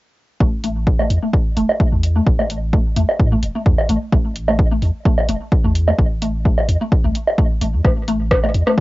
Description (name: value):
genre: minimal techno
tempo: 129 BPM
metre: 4/4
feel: swing 54% on 16ths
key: unclear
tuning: A4 = 439 Hz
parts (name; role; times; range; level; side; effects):
- mallet-like synth pluck; riff; 0.4-8.7 s; A3; -23 LUFS; left 1 dB; ensemble chorus, sidechain pumping, cassette tape, analog delay
- punchy sub bass; bass; 0.4-8.6 s; E1 to A2; -19 LUFS; equal; sidechain pumping
- electronic kick drum; drums; 0.4-8.8 s; none; -16 LUFS; equal; cassette tape
- electronic hi-hat; drums; 0.6-8.6 s; none; -29 LUFS; left 1 dB; cassette tape
- electronic woodblock and rim click; percussion; 1.0-8.8 s; none; -20 LUFS; right 1 dB; overdrive, cassette tape, tape echo
room: light reverb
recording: home recording on cassette, nothing above 7.7 kHz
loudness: -15 LUFS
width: side -19 dB against mid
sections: 0.4-8.8 A section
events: none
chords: 0.4 A5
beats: | 0.41 0.87 1.33 1.80 | 2.27 2.73 3.19 3.66 | 4.13 4.59 5.06 5.52 | 5.99 6.45 6.92 7.38 | 7.85 8.31 8.78